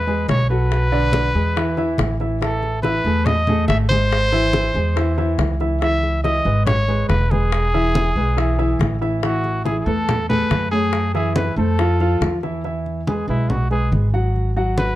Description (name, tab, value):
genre	Afro-Cuban jazz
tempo	141 BPM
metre	4/4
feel	straight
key	E major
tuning	A4 = 439 Hz
part	warm trumpet	melody	0.0-15.0 s	E4 to E5	-22 LUFS	equal	plate reverb
part	upright bass	bass	0.0-14.9 s	E1 to F#2	-20 LUFS	equal	none
part	warm baby grand piano	accompaniment	0.1-14.9 s	D3 to F#5	-22 LUFS	equal	none
part	bongos	percussion	0.1-12.6 s	none	-29 LUFS	left 7 dB	none
part	congas	percussion	0.1-15.0 s	none	-25 LUFS	equal	none
room	light reverb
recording	close, detailed microphones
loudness	-16 LUFS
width	side -15 dB against mid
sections	0.0-12.6 A section; 12.6-15.0 B section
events	trumpet solo 12.6-15.0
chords	0.0 C#m7; 0.7 Bm7; 1.6 E5; 2.4 Asus2; 4.1 G#aug; 5.8 C#m9; 7.5 E; 9.2 Amaj9; 10.9 F#m9; 11.8 F; 12.6 E; 14.4 C#sus4/G# (rootless)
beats	0.29 | 0.71 1.14 1.56 1.99 | 2.41 2.84 3.26 3.69 | 4.11 4.54 4.96 5.39 | 5.82 6.24 6.67 7.09 | 7.52 7.95 8.38 8.80 | 9.23 9.66 10.08 10.51 | 10.94 11.36 11.79 12.22 | 12.64 13.07 13.50 13.93 | 14.35 14.78